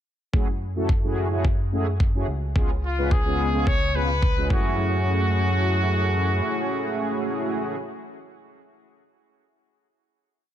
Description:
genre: nu-disco, nu disco.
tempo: 108 BPM.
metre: 4/4.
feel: straight.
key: F# minor.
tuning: A4 = 441 Hz.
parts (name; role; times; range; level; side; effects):
mellow synth brass; accompaniment; 0.3-7.8 s; G#3 to B4; -27 LUFS; equal; chorus, sidechain pumping, ping-pong delay.
chorused synth bass; bass; 0.3-6.4 s; C#2 to F#2; -25 LUFS; equal; none.
electronic kick drum; drums; 0.3-4.6 s; none; -22 LUFS; equal; none.
bright trumpet section; melody; 2.8-7.8 s; E#4 to C#5; -27 LUFS; left 1 dB; ping-pong delay.
room: light reverb, digital ambience.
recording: none.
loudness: -21 LUFS.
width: side -10 dB against mid.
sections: 0.3-4.8 breakdown; 4.8-7.0 final hit.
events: none.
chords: 0.3 F#m7; 2.3 C#7; 4.5 F#m7.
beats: | 0.34 0.89 1.45 2.00 | 2.56 3.11 3.67 4.22 | 4.78 5.33 5.89 6.45.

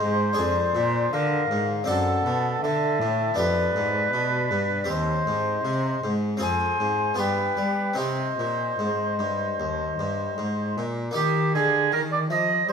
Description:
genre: classical, baroque-style sonata movement with continuo.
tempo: 77 BPM.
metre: 4/4.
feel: uneven beats, rubato.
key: C minor.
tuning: A4 = 444 Hz.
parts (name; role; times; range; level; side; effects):
mellow hollow tenor recorder; melody; 0.0-12.7 s; G4 to Ab5; -29 LUFS; left 8 dB; none.
warm oboe; second line; 0.0-12.7 s; G4 to Eb5; -26 LUFS; right 4 dB; none.
harpsichord; accompaniment; 0.0-12.7 s; Eb2 to A4; -29 LUFS; left 1 dB; none.
rich cello; bass; 0.0-12.7 s; Eb2 to G3; -28 LUFS; right 2 dB; none.
room: moderate recital hall reverb, RT60 1.7 s.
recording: minimal, uncompressed stereo recording.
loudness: -22 LUFS.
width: side -6 dB against mid.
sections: 0.0-11.2 A section; 11.2-12.7 A section.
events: none.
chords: 0.4 Ddim/F; 1.9 D7/F#; 3.4 G7/F; 4.9 Cm/Eb; 6.4 Fm; 7.2 G7; 8.0 Cm; 11.2 Eb.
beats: 0.38 1.13 | 1.88 2.62 3.38 4.13 | 4.89 5.65 6.42 7.19 | 7.99 8.80 9.60 10.39 | 11.17 11.93 12.69.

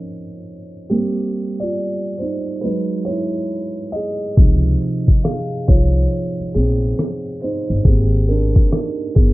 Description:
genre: lo-fi hip hop.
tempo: 69 BPM.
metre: 4/4.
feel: swing 63% on 16ths.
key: Db lydian.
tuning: A4 = 438 Hz.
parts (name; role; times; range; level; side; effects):
felt-muted upright piano; accompaniment; 0.0-9.3 s; C3 to F5; -21 LUFS; right 1 dB; cassette tape, low-pass filter, plate reverb.
upright bass; bass; 4.4-9.3 s; G1 to Db2; -17 LUFS; equal; none.
dusty soul sampler-style drum kit; drums; 4.4-9.3 s; hi-hat, kick drum, rim click; -13 LUFS; equal; overdrive.
room: light reverb.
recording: dark, warm production, low-pass filter.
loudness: -16 LUFS.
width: side -19 dB against mid.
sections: 0.0-9.3 A section.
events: felt piano solo 0.0-9.3; filter sweep 0.0-9.3.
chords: 0.0 Dbmaj9; 0.9 Ebmaj13/G; 2.6 Emaj9; 4.4 Dbmaj9; 7.9 Abmaj9.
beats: 0.03 | 0.90 1.77 2.64 3.51 | 4.38 5.25 6.12 6.99 | 7.86 8.72.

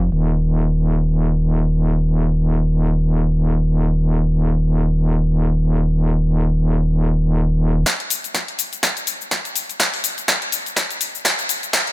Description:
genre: bass house.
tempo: 124 BPM.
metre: 4/4.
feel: swing 57% on 16ths.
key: unclear.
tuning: A4 = 441 Hz.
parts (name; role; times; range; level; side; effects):
metallic wobble bass; bass; 0.0-7.8 s; Eb1; -16 LUFS; equal; chorus, overdrive, sidechain pumping.
electronic kick drum; drums; 7.9-11.8 s; none; -29 LUFS; equal; overdrive, high-pass filter on kick.
house drum kit; drums; 7.9-11.9 s; hi-hat, shaker, snare drum; -18 LUFS; left 1 dB; high-pass filter on cymbals, low-pass filter on cymbals, high-pass filter on snare, low-pass filter on snare, high-pass filter on hats, low-pass filter on hats, high-pass filter on perc, low-pass filter on perc.
room: little or no reverb.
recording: high-pass filter.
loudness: -16 LUFS.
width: side -17 dB against mid.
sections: 0.0-7.9 A section; 7.9-11.9 B section.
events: build-up 7.9-11.9; drum fill 7.9-11.9.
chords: none.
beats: | 0.12 0.60 1.09 1.57 | 2.06 2.54 3.02 3.51 | 3.99 4.47 4.96 5.44 | 5.93 6.41 6.89 7.38 | 7.86 8.35 8.83 9.31 | 9.80 10.28 10.77 11.25 | 11.73.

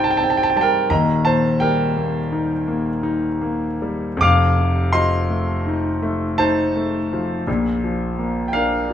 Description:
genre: classical, romantic nocturne for solo piano.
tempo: 56 BPM (dotted quarters).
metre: 9/8.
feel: rubato.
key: unclear.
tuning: A4 = 442 Hz.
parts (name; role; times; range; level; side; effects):
warm concert grand piano; solo; 0.0-8.9 s; Eb1 to F6; -17 LUFS; equal; none.
room: moderate large studio reverb, RT60 0.9 s.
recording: heard from further back in the room.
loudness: -17 LUFS.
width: side -9 dB against mid.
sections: 0.0-8.9 A section.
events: none.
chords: 0.0 Cm; 0.9 Eb; 4.2 F7; 7.5 Bb.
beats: | 0.91 1.97 3.03 | 4.22 5.29 6.38 | 7.47 8.54.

